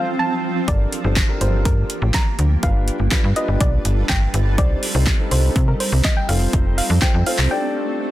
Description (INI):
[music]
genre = dance-pop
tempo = 123 BPM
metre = 4/4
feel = straight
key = G minor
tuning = A4 = 440 Hz
[part]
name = soft round pluck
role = melody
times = 0.0-8.0 s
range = Bb4 to Bb5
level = -27 LUFS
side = equal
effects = chorus, dub echo
[part]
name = dark baby grand piano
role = accompaniment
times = 0.0-8.1 s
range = C4 to D5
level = -27 LUFS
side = left 2 dB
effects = sidechain pumping
[part]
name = shimmering ambient pad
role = sustained chords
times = 0.0-8.1 s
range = F3 to B4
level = -27 LUFS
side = right 2 dB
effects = chorus, built-in reverb, sidechain pumping
[part]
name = slap-like FM bass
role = bass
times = 0.7-7.5 s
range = F1 to C3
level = -18 LUFS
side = equal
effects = sidechain pumping
[part]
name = pop drum kit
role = drums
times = 0.7-7.5 s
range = handclaps, hi-hat, kick drum, snare drum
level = -19 LUFS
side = equal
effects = overdrive
[sound]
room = little or no reverb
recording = dense, heavily limited modern master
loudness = -16 LUFS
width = side -15 dB against mid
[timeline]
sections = 0.0-8.1 A section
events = break 7.5-8.1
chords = 0.0 F; 0.7 Gmadd9; 2.6 G7; 4.6 Cm; 6.3 F; 7.5 Dsus4